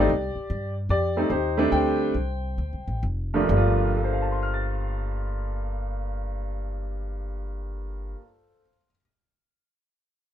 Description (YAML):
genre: jazz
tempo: 127-150 BPM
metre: 4/4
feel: swing 66% on 8ths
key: G minor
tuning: A4 = 440 Hz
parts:
  - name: clear upright piano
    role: melody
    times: 0.0-9.0 s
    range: G2 to A6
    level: -26 LUFS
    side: equal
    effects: none
  - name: upright bass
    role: bass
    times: 0.0-8.1 s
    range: F1 to G2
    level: -28 LUFS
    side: equal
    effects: none
room: light reverb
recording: minimal, uncompressed stereo recording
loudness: -24 LUFS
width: side -10 dB against mid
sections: 0.1-3.5 A section; 3.5-7.3 B section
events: slowing down 0.1-3.5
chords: 0.1 Am7b5 (rootless); 1.7 D7sus4; 3.5 Gm7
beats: | 0.09 0.49 0.90 1.31 | 1.73 2.15 2.59 3.04 | 3.50 3.97 4.44 4.92 | 5.39 5.86 6.33 6.80